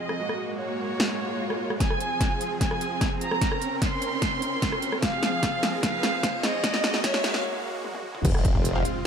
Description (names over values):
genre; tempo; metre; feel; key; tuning
heavy wobble dubstep; 149 BPM; 4/4; half-time; F phrygian; A4 = 439 Hz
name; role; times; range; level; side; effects
warm chamber violin section; melody; 0.0-7.4 s; Db5 to C6; -30 LUFS; right 2 dB; ping-pong delay
supersaw chords; sustained chords; 0.0-9.1 s; F3 to Bb4; -32 LUFS; right 1 dB; sidechain pumping
big-room dance drum kit; drums; 0.1-8.9 s; crash cymbal, hi-hat, rim click, snare drum, toms; -27 LUFS; equal; none
swell, riser and impact; sound effects; 1.2-9.1 s; none; -34 LUFS; equal; none
electronic kick drum; drums; 1.8-8.6 s; none; -27 LUFS; equal; none
formant-sweep wobble bass; bass; 8.2-8.8 s; F1; -26 LUFS; equal; chorus, overdrive
orchestra-hit-like synth stab; stabs; 8.8-8.9 s; F4 to F5; -30 LUFS; left 1 dB; built-in reverb
room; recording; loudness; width
moderate plate reverb, RT60 1.5 s, digital ambience; dark, warm production, high-pass filter; -23 LUFS; side -7 dB against mid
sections
0.0-1.8 A section; 1.8-8.2 B section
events
swell 1.2-1.8; build-up 1.8-8.2; drum fill 1.8-7.4, 7.8-8.2; filter sweep 1.8-8.2; riser 3.9-7.4; break 7.4-8.2; impact 8.2-9.1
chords
0.2 Gbadd9; 1.8 Fm; 3.4 Bbmadd9; 5.0 Fm; 6.6 Gbadd9; 8.2 Fm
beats
| 0.19 0.60 1.00 1.40 | 1.80 2.21 2.61 3.01 | 3.42 3.82 4.22 4.62 | 5.03 5.43 5.83 6.23 | 6.64 7.04 7.44 7.84 | 8.25 8.65 9.05